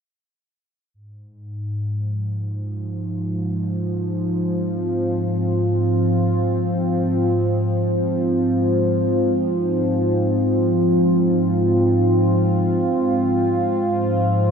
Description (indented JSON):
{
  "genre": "ambient",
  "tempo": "free time",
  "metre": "none",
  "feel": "none",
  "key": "F minor",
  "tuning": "A4 = 440 Hz",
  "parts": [
    { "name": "sweeping resonant pad", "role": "sustained chords", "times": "0.9-14.5 s", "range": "Ab2 to F4", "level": "-18 LUFS", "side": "equal", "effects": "chorus, phaser" }
  ],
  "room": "wet huge ambient reverb, RT60 7.4 s",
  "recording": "dreamy mix soaked in reverb, cassette tape",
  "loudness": "-18 LUFS",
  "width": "side -6 dB against mid",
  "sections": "0.9-14.5 A section",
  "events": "none",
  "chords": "0.9 Fm",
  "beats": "free time"
}